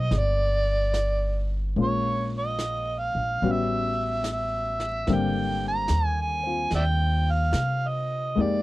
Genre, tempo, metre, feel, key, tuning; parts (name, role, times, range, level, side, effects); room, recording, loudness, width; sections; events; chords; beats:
jazz ballad; 73 BPM; 4/4; swing 68% on 8ths; A4 = 441 Hz
overdriven harmonica; melody; 0.0-8.6 s; Db5 to Bb5; -27 LUFS; right 2 dB
warm baby grand piano; accompaniment; 0.0-8.6 s; D3 to G4; -29 LUFS; left 4 dB
upright bass; bass; 0.0-8.6 s; G1 to C3; -27 LUFS; equal
vintage brush drum kit; drums; 0.1-8.6 s; brushed snare drum, hi-hat, snare drum; -38 LUFS; equal
little or no reverb; dry, close 1970s-style studio recording; -23 LUFS; side -18 dB against mid
0.0-8.6 A section
0.0 Cm9; 1.8 Bbm7; 3.4 A13; 5.1 Abmaj9#11
0.12 0.94 | 1.77 2.59 3.42 4.24 | 5.07 5.89 6.72 7.54 | 8.37